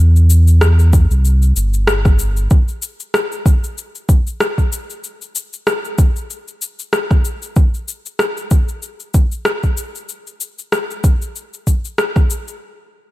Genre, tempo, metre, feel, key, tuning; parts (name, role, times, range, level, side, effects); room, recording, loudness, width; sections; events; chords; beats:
organic downtempo; 95 BPM; 4/4; swing 56% on 16ths; C major; A4 = 440 Hz
warm sub bass; bass; 0.0-2.5 s; G1 to E2; -10 LUFS; equal
electronic cabasa and rim click; drums; 0.2-12.6 s; -20 LUFS; left 1 dB; overdrive
electronic kick drum; drums; 0.9-12.3 s; -13 LUFS; equal
little or no reverb; -13 LUFS; side -17 dB against mid
0.0-12.6 A section
0.61 1.25 1.88 | 2.51 3.14 3.77 4.40 | 5.04 5.67 6.30 6.93 | 7.56 8.19 8.82 9.46 | 10.09 10.72 11.35 11.98